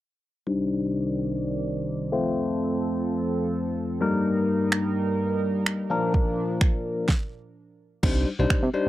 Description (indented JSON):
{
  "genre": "dance-pop",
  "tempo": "127 BPM",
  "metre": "4/4",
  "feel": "straight",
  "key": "unclear",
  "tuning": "A4 = 435 Hz",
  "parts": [
    { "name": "barky tine electric piano", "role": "accompaniment", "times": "0.5-8.9 s", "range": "F3 to C5", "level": "-26 LUFS", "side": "left 3 dB", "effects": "phaser, sidechain pumping, low-pass filter" },
    { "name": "chorused pulse-width pad", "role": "sustained chords", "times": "0.5-7.1 s", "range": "C2 to D5", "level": "-29 LUFS", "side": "right 4 dB", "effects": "sidechain pumping, low-pass filter" },
    { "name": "deep house drum kit", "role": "drums", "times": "4.7-8.6 s", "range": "crash cymbal, finger snaps, kick drum, snare drum", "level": "-23 LUFS", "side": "right 1 dB", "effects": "none" },
    { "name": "chorused synth bass", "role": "bass", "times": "8.0-8.9 s", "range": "C2 to C3", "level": "-24 LUFS", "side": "right 1 dB", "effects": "sidechain pumping" }
  ],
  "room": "light reverb",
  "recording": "dry, close 1970s-style studio recording",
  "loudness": "-23 LUFS",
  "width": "side -14 dB against mid",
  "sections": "0.5-8.0 A section",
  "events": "filter sweep 0.5-8.0; stop 7.1-8.0",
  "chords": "0.5 Cmadd9; 2.1 F; 4.0 Eb/G; 5.9 Bb; 8.0 Cmadd9"
}